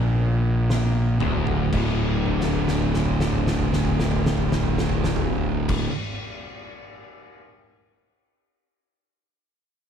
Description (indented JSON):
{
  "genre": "stoner and doom metal",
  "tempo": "57 BPM",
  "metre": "4/4",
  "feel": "straight",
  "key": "unclear",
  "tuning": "A4 = 440 Hz",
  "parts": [
    { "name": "fuzz guitar", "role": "riff", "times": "0.0-5.9 s", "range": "D2 to D3", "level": "-26 LUFS", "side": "left 10 dB", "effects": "distortion" },
    { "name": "thick fuzz guitar", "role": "riff", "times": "0.0-5.9 s", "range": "D2 to D3", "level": "-26 LUFS", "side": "right 8 dB", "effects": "distortion" },
    { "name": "fuzz fingered electric bass", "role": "bass", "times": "0.0-5.9 s", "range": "D1 to Bb1", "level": "-26 LUFS", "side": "equal", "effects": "overdrive" },
    { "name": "oversized low-tuned drum kit", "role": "drums", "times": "0.7-7.4 s", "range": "crash cymbal, kick drum, snare drum, toms", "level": "-27 LUFS", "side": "right 1 dB", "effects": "none" }
  ],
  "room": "little or no reverb",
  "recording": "none",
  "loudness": "-20 LUFS",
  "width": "side -8 dB against mid",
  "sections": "0.0-1.7 A section; 1.7-6.0 B section",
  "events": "slowing down 0.0-1.7; drum fill 0.7-1.7, 2.3-5.7",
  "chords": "0.0 D5"
}